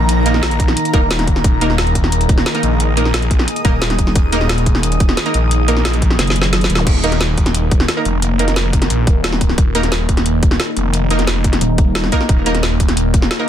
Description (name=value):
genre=dark technical drum and bass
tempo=177 BPM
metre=4/4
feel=straight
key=unclear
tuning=A4 = 440 Hz
part: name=deep dark ambient pad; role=sustained chords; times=0.0-13.5 s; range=Eb3 to Bb4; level=-22 LUFS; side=left 1 dB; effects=chorus, built-in reverb, sidechain pumping
part: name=phased detuned saw bass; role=bass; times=0.0-13.3 s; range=Eb1 to Bb1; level=-17 LUFS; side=equal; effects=phaser, overdrive, sidechain pumping
part: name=granular cloud pad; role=texture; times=0.0-6.9 s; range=Eb4 to Eb6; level=-24 LUFS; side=equal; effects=built-in reverb, sidechain pumping
part: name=drum and bass drum kit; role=drums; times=0.1-13.4 s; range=crash cymbal, hi-hat, snare drum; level=-19 LUFS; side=equal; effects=none
part: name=orchestra-hit-like synth stab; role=stabs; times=0.3-13.5 s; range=Bb3 to Bb4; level=-22 LUFS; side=right 2 dB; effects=built-in reverb, tape echo
part: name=electronic kick drum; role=drums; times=0.6-13.2 s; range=none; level=-14 LUFS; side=equal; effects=overdrive
part: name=pulsing pluck wobble bass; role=bass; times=3.6-4.1, 6.2-6.9, 11.6-12.1 s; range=Eb1 to Gb1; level=-17 LUFS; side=equal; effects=distortion, chorus
part: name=zap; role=sound effects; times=6.8-6.9 s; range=none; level=-28 LUFS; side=equal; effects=none
room=little or no reverb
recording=dense, heavily limited modern master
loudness=-12 LUFS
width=side -10 dB against mid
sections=0.0-6.9 A section; 6.9-13.5 A section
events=drop 0.0-6.9, 6.9-13.5; kick drops out 6.2-6.9; drum fill 6.2-6.9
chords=0.0 Eb5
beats=| 0.09 0.43 0.77 1.10 | 1.44 1.78 2.12 2.46 | 2.80 3.14 3.48 3.82 | 4.16 4.50 4.83 5.17 | 5.51 5.85 6.19 6.53 | 6.87 7.21 7.55 7.88 | 8.22 8.56 8.90 9.24 | 9.58 9.92 10.26 10.60 | 10.94 11.27 11.61 11.95 | 12.29 12.63 12.97 13.31